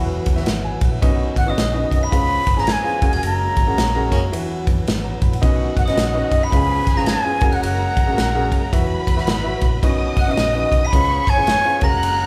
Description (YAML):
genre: uptempo 1960s-style soul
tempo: 109 BPM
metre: 4/4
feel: swing 62% on 8ths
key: B major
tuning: A4 = 440 Hz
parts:
  - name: warm grand piano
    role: accompaniment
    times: 0.0-12.3 s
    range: B2 to B5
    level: -27 LUFS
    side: equal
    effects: none
  - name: percussive tonewheel organ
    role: sustained chords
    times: 0.0-12.3 s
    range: D#3 to C#4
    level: -33 LUFS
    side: equal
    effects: slow rotary speaker
  - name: vintage muted fingered electric bass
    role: bass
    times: 0.0-12.3 s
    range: E1 to E2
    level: -27 LUFS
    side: equal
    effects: none
  - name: natural country drum kit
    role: drums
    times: 0.3-12.2 s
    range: kick drum, ride cymbal, snare drum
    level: -22 LUFS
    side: equal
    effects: none
  - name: breathy mellow silver concert flute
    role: melody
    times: 1.4-12.3 s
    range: D#5 to B5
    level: -23 LUFS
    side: equal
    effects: none
  - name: glockenspiel with soft plastic mallets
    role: second line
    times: 1.4-12.3 s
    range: D#6 to B6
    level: -35 LUFS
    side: equal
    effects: none
  - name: clear horn section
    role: second line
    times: 3.8-4.2 s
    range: A#3 to C#5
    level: -32 LUFS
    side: equal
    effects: none
  - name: rich studio violin section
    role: second line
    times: 5.4-12.3 s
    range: F#4 to F#6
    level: -31 LUFS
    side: equal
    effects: none
room: light reverb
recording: band playing live in one room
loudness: -18 LUFS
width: mono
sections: 0.0-12.3 A section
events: band accent 3.2-5.4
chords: 0.0 Esus2; 1.0 Badd9; 2.1 C#7; 3.0 F#add9; 4.3 Esus2; 5.4 Badd9; 6.5 C#7; 7.4 F#add9; 8.7 Esus2; 9.8 Badd9; 10.9 C#7; 11.8 F#add9